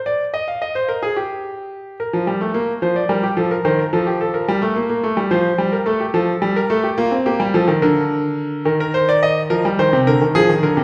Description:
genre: classical, baroque-style two-part invention for grand piano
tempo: 72 BPM (dotted quarters)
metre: 12/8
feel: straight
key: Eb major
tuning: A4 = 440 Hz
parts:
  - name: bright concert grand piano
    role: solo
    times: 0.1-10.8 s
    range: C3 to F5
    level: -18 LUFS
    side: equal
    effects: none
room: wet recital hall reverb, RT60 1.4 s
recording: heard from further back in the room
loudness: -18 LUFS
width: mono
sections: 0.0-10.8 A section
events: none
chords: 0.0 N.C.; 2.0 Bb5; 3.6 Eb (rootless); 5.3 F; 7.0 Bb; 8.7 Eb5

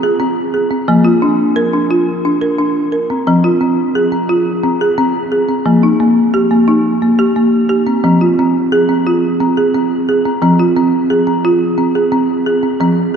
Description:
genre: world meditative, meditative tuned percussion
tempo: 176 BPM (eighths)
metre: 7/8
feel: straight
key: F dorian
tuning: A4 = 440 Hz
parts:
  - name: folk marimba with medium hard mallets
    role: solo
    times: 0.0-13.2 s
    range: F3 to Bb4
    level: -11 LUFS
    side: equal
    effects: none
room: wet cathedral reverb, RT60 5.3 s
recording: in a vast, echoing space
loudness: -11 LUFS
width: side -7 dB against mid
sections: 0.0-12.8 A section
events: none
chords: 0.0 Fm; 0.9 Bb/F; 3.3 Fm; 5.7 Eb/F; 8.0 Fm

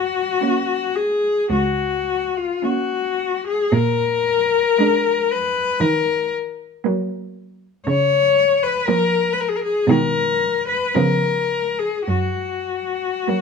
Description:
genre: classical, lyrical piece for cello ensemble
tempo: 49-61 BPM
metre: 4/4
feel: rubato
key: F# major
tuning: A4 = 444 Hz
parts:
  - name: clear cello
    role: melody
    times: 0.0-13.4 s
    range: E#4 to C#5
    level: -18 LUFS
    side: left 6 dB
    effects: none
  - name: rich cello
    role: bass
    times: 0.0-13.1 s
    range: C#2 to D#3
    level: -22 LUFS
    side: right 3 dB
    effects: none
  - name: rich cello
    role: second line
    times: 0.4-13.4 s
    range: G#3 to D4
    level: -25 LUFS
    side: right 11 dB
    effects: none
  - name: clear cello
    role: accompaniment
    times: 0.4-13.4 s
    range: D#3 to A#3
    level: -24 LUFS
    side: right 1 dB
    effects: none
room: light reverb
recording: minimal, uncompressed stereo recording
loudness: -17 LUFS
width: side -5 dB against mid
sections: 0.0-13.4 A section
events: none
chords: 0.0 F#; 3.7 A#7; 5.8 D#m; 7.9 A#m/C#; 9.9 G#m/B; 10.9 C#7; 12.1 N.C.

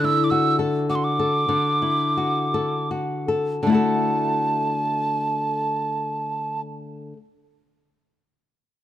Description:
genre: celtic folk, Celtic slow air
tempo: 40-55 BPM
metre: 3/4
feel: rubato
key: D major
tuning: A4 = 440 Hz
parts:
  - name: breathy mellow tin whistle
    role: melody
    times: 0.0-6.6 s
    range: A5 to E6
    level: -23 LUFS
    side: right 2 dB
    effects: none
  - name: flamenco guitar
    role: accompaniment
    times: 0.0-7.2 s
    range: D3 to A4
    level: -23 LUFS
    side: left 2 dB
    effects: none
room: light reverb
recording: close, detailed microphones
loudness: -20 LUFS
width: side -12 dB against mid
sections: 0.0-3.6 A section; 3.6-8.1 B section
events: slowing down 0.0-3.6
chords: 0.0 Dadd9

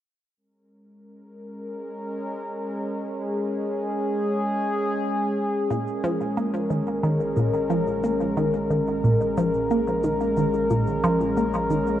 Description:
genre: ambient, sequencer-driven space music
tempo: 90 BPM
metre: 4/4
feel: straight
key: Bb minor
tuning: A4 = 437 Hz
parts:
  - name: sweeping resonant pad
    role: sustained chords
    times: 0.4-12.0 s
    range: Ab3 to Bb4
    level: -24 LUFS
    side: equal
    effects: chorus
  - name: resonant blip pluck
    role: riff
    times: 5.7-11.9 s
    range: Bb2 to Bb3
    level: -24 LUFS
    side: right 1 dB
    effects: phaser, cassette tape, tape echo
  - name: warm sub bass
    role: bass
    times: 5.7-12.0 s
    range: Bb1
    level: -40 LUFS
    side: equal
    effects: none
  - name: cabasa and woodblock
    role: percussion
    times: 5.7-12.0 s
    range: none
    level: -54 LUFS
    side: right 2 dB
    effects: tape echo
room: wet huge ambient reverb, RT60 8.5 s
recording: worn, warbling old tape, cassette tape, warbly pitch drift, nothing above 10.6 kHz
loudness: -22 LUFS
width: side -11 dB against mid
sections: 0.4-5.7 A section; 5.7-12.0 B section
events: fade-in on analog synth pad 0.4-5.7; fade-in on sub bass 5.7-12.0; fade-in on drum 5.7-12.0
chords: 0.4 Bbm7

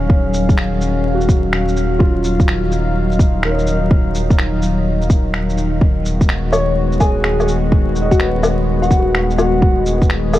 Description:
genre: future garage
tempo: 126 BPM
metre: 4/4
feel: swing 66% on 16ths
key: Eb minor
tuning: A4 = 441 Hz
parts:
  - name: felt-muted upright piano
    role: accompaniment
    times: 0.0-10.4 s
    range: F4 to Eb5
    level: -24 LUFS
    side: right 1 dB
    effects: vintage 12-bit sampler grit, sidechain pumping, tape echo
  - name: warbly tape-like pad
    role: sustained chords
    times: 0.0-10.4 s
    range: Eb3 to F5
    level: -20 LUFS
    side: left 1 dB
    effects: chorus, built-in reverb, sidechain pumping
  - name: warm sub bass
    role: bass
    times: 0.0-10.4 s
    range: Eb1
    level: -20 LUFS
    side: equal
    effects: sidechain pumping
  - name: electronic kick drum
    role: drums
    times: 0.1-10.1 s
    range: none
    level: -13 LUFS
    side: equal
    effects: none
  - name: electronic shaker, finger snaps and woodblock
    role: drums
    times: 0.3-10.4 s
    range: none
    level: -24 LUFS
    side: left 1 dB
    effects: none
  - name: soft struck synth lead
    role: melody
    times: 6.5-10.1 s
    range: Gb4 to Db5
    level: -19 LUFS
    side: left 2 dB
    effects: chorus, tape echo
room: light reverb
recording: vinyl crackle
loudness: -13 LUFS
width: side -14 dB against mid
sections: 0.0-10.4 A section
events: none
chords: 0.0 Ebm9; 5.8 Abm7/Eb

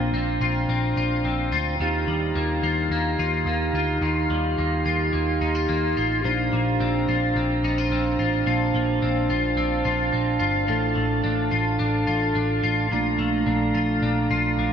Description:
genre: dream pop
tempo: 108 BPM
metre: 4/4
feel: straight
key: Bb major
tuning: A4 = 442 Hz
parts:
  - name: mellow tonewheel organ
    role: sustained chords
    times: 0.0-14.7 s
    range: A3 to C6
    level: -24 LUFS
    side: right 2 dB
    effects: slow rotary speaker
  - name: clean electric guitar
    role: arpeggios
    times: 0.0-14.7 s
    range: A2 to F4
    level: -26 LUFS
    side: left 4 dB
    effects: analog chorus, analog delay
  - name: vintage muted picked electric bass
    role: bass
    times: 0.0-14.7 s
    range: G1 to Eb2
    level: -26 LUFS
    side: equal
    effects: none
room: wet huge ambient reverb, RT60 8.2 s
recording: dreamy mix soaked in reverb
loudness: -21 LUFS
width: side -8 dB against mid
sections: 0.0-14.7 A section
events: none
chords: 0.0 Bbadd9; 1.8 Ebadd9; 6.2 Bbadd9; 10.7 Dm/A; 12.9 Bbmaj7

